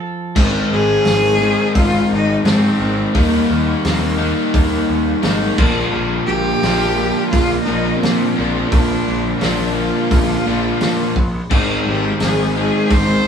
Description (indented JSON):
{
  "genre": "quiet-loud alternative rock",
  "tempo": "86 BPM",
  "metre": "4/4",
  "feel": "straight",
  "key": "unclear",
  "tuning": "A4 = 439 Hz",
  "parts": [
    { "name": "crunchy overdriven guitar", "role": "riff", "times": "0.4-13.3 s", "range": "Ab2 to Eb4", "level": "-21 LUFS", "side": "right 4 dB", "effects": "none" },
    { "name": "overdriven electric guitar", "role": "riff", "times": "0.4-13.3 s", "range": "Ab2 to Eb4", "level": "-20 LUFS", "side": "left 6 dB", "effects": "none" },
    { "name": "fuzz picked electric bass", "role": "bass", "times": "0.4-13.3 s", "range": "Ab1 to Bb2", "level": "-21 LUFS", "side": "equal", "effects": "overdrive" },
    { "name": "loose indie drum kit", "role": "drums", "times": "0.4-13.1 s", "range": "crash cymbal, hi-hat, kick drum, snare drum", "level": "-20 LUFS", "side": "equal", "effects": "none" },
    { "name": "rich cello", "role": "melody", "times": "0.7-13.3 s", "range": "Bb3 to C5", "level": "-20 LUFS", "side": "equal", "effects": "none" }
  ],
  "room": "moderate stone room reverb, RT60 0.9 s",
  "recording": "band playing live in one room",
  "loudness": "-14 LUFS",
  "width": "side -7 dB against mid",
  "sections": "0.4-13.3 A section",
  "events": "break 0.0-0.4",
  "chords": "0.4 Ab; 3.1 Eb; 5.6 Bb; 11.5 Ab"
}